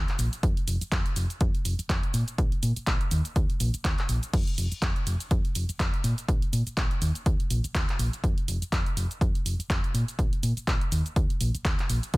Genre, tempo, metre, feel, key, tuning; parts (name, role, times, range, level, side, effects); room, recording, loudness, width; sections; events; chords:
filtered disco house; 123 BPM; 4/4; swing 57% on 16ths; A4 = 440 Hz
hollow-body short-scale fingered electric bass; bass; 0.0-12.2 s; F1 to Bb2; -28 LUFS; equal; sidechain pumping
punchy analog drum machine; drums; 0.1-12.2 s; crash cymbal, handclaps, hi-hat, shaker; -33 LUFS; equal; sidechain pumping on hats, sidechain pumping on perc, sidechain pumping on cymbals
electronic kick drum; drums; 0.4-12.2 s; -26 LUFS; equal
little or no reverb; dense, heavily limited modern master; -24 LUFS; side -22 dB against mid
0.0-12.2 A section